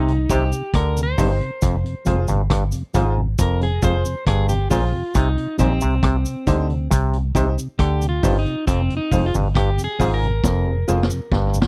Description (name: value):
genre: roots reggae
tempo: 68 BPM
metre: 4/4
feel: straight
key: unclear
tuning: A4 = 443 Hz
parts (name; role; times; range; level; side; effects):
- electric guitar at the edge of break-up; accompaniment; 0.0-11.4 s; C4 to C5; -28 LUFS; equal; tape echo
- auto-wah clav; riff; 0.0-11.6 s; F2 to D3; -28 LUFS; equal; none
- vintage muted fingered electric bass; bass; 0.0-11.7 s; F1 to D2; -23 LUFS; equal; none
- mellow tonewheel organ; accompaniment; 0.1-11.6 s; F2 to C4; -29 LUFS; equal; chorus vibrato, slow rotary speaker
- vintage drum kit; drums; 0.1-11.7 s; hi-hat, kick drum, rim click, snare drum; -24 LUFS; equal; none
- clear upright piano; stabs; 0.3-11.1 s; Eb4 to C5; -28 LUFS; equal; tube saturation
- cabasa; percussion; 0.3-11.7 s; none; -36 LUFS; equal; none
room: little or no reverb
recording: dry, close 1970s-style studio recording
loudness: -20 LUFS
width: mono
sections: 0.0-11.7 A section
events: clean electric guitar solo 0.0-11.7; drum fill 10.4-11.7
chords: 0.0 Cm; 1.6 Fm; 5.1 Cm; 8.7 Fm